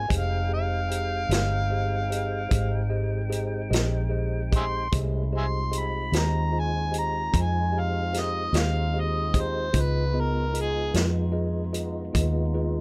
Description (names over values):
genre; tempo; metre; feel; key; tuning
slow blues; 50 BPM (dotted quarters); 12/8; straight; F minor; A4 = 441 Hz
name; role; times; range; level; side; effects
overdriven harmonica; melody; 0.0-11.0 s; Ab4 to C6; -32 LUFS; equal; none
tonewheel organ; sustained chords; 0.0-12.8 s; Ab3 to G5; -39 LUFS; equal; slow rotary speaker
vintage muted fingered electric bass; bass; 0.0-12.8 s; F1 to F2; -29 LUFS; equal; none
mellow tine electric piano; accompaniment; 0.1-12.8 s; Cb4 to F5; -36 LUFS; equal; none
vintage drum kit; drums; 0.1-12.3 s; hi-hat, kick drum, snare drum; -29 LUFS; equal; none
room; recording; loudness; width
little or no reverb; none; -26 LUFS; mono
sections
0.0-12.8 A section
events
none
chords
0.1 Fm7; 9.7 Db7